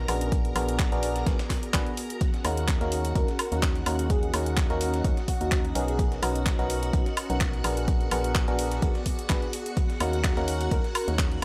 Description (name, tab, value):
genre	piano house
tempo	127 BPM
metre	4/4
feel	swing 54% on 16ths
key	Eb minor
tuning	A4 = 440 Hz
part	string machine, violins	sustained chords	0.0-11.4 s	Gb4 to Bb5	-42 LUFS	equal	ensemble chorus, sidechain pumping
part	barking FM electric piano	riff	0.0-11.4 s	Bb3 to Cb5	-34 LUFS	equal	chorus, sidechain pumping, low-pass filter
part	organ-like FM bass	bass	0.0-11.4 s	Bb1 to Eb2	-33 LUFS	equal	sidechain pumping
part	airy breathy pad	texture	0.0-11.4 s	Cb4 to Eb5	-39 LUFS	equal	chorus, sidechain pumping
part	dusty soul sampler-style drum kit	drums	0.1-11.4 s	hi-hat, snare drum	-44 LUFS	equal	none
part	garage drum kit	drums	0.1-11.4 s	handclaps, hi-hat, woodblock	-35 LUFS	equal	none
part	electronic kick drum	drums	0.3-11.3 s	none	-29 LUFS	equal	none
part	airy dreamy lead	melody	3.2-6.0, 10.7-11.1 s	Gb4 to Bb4	-38 LUFS	equal	chorus
room	light reverb, digital ambience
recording	dry, gritty hardware recording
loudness	-26 LUFS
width	mono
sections	0.0-11.4 A section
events	none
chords	0.1 Bb7b9b13; 2.2 Ebm7; 7.6 Bb7b9b13; 9.8 Ebm7